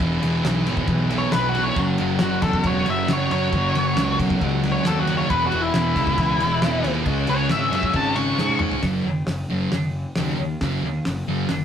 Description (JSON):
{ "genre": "garage rock duo or trio", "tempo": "136 BPM", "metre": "4/4", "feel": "straight", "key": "F# mixolydian", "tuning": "A4 = 440 Hz", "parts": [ { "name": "overdriven combo organ", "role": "sustained chords", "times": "0.0-8.8 s", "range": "C#4 to C#5", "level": "-33 LUFS", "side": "equal", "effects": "none" }, { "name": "thick fuzz guitar", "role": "riff", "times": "0.0-11.5 s", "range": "E2 to C#4", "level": "-23 LUFS", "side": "right 1 dB", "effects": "distortion" }, { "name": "fuzz picked electric bass", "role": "bass", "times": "0.0-11.6 s", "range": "E1 to G#2", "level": "-26 LUFS", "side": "equal", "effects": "overdrive" }, { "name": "cloth-damped thuddy drum kit", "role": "drums", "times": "0.0-11.6 s", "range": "crash cymbal, hi-hat, kick drum, ride cymbal, snare drum, toms", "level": "-27 LUFS", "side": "equal", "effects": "none" }, { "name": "octave-fuzz lead guitar", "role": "melody", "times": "1.2-8.8 s", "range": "E4 to C#6", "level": "-23 LUFS", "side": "left 2 dB", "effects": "distortion" } ], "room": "moderate studio reverb, RT60 0.5 s", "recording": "rough rehearsal-room recording, warm saturation", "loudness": "-19 LUFS", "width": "side -8 dB against mid", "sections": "0.0-8.8 A section; 8.8-11.6 B section", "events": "drum fill 8.4-8.8", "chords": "0.0 E; 1.8 F#; 5.3 E; 7.1 C#; 8.8 F#5" }